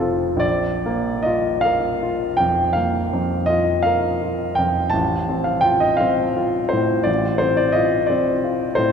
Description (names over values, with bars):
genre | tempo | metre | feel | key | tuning
classical, romantic nocturne for solo piano | 42-60 BPM (dotted quarters) | 12/8 | rubato | unclear | A4 = 440 Hz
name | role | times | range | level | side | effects
warm baby grand piano | solo | 0.0-8.9 s | F1 to A5 | -17 LUFS | equal | none
room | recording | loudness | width
wet cathedral reverb, RT60 4.8 s | recorded in a church or concert hall | -17 LUFS | side -6 dB against mid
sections
0.4-8.9 A section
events
none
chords
0.4 Bb; 4.9 F/A